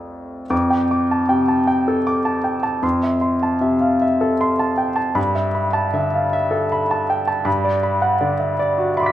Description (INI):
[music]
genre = classical, impressionist solo piano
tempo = 78 BPM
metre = 3/4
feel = uneven beats, rubato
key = F lydian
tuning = A4 = 436 Hz
[part]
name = clear grand piano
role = solo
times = 0.0-9.1 s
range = F2 to B6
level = -17 LUFS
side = equal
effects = none
[sound]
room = wet recital hall reverb, RT60 1.5 s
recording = none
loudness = -17 LUFS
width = side -12 dB against mid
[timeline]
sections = 0.5-9.1 A section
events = none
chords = 0.0 F6; 0.5 F69; 2.8 C6/F; 5.2 G69; 7.5 D69/G